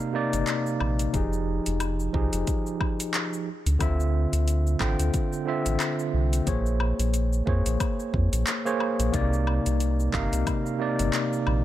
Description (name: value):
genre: sunset chillout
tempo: 90 BPM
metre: 4/4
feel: swing 58% on 16ths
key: unclear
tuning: A4 = 437 Hz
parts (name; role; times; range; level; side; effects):
- overdriven tine electric piano; accompaniment; 0.0-11.6 s; C3 to G5; -27 LUFS; equal; auto-pan, digital delay
- deep house drum kit; drums; 0.0-11.6 s; cabasa, handclaps, hi-hat, woodblock; -32 LUFS; left 2 dB; overdrive
- round analog bass; bass; 0.3-11.6 s; F1 to F2; -25 LUFS; equal; none
- electronic kick drum; drums; 1.1-10.6 s; none; -29 LUFS; equal; overdrive
room: digital ambience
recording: none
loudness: -23 LUFS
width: side -13 dB against mid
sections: 0.0-11.6 A section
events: none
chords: 0.0 Cm9; 1.1 Fm9; 3.5 Dm9; 6.5 Bbm9; 9.1 Cm9